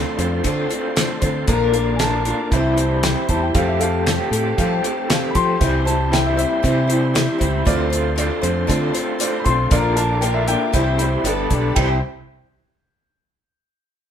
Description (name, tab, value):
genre	folk rock and heartland rock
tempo	117 BPM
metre	4/4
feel	straight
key	C major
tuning	A4 = 440 Hz
part	picked twelve-string acoustic guitar	accompaniment	0.0-12.0 s	Bb2 to C5	-24 LUFS	left 3 dB	none
part	bright tonewheel organ	sustained chords	0.0-12.0 s	C4 to D6	-32 LUFS	equal	chorus vibrato, fast rotary speaker
part	electric guitar through a small old amp	riff	0.0-12.0 s	Bb2 to A4	-23 LUFS	equal	tremolo
part	fingered electric bass	bass	0.0-12.0 s	G1 to F3	-22 LUFS	equal	none
part	damped 70s drum kit	drums	0.2-11.9 s	hi-hat, kick drum, ride cymbal, snare drum	-21 LUFS	equal	none
part	warm upright piano	second line	2.0-12.0 s	A4 to C6	-24 LUFS	left 3 dB	none
part	dark baby grand piano	accompaniment	3.5-12.0 s	E4 to F5	-29 LUFS	right 4 dB	none
room	moderate studio reverb, RT60 0.9 s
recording	band playing live in one room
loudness	-16 LUFS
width	side -9 dB against mid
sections	0.0-11.8 A section; 11.8-13.8 B section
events	upright piano solo 0.0-11.8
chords	0.0 Dm7; 1.5 Bb; 2.5 C; 3.5 Fadd9; 5.6 C; 7.7 Dm7; 9.7 Bb; 10.7 C; 11.3 Gadd9; 11.8 C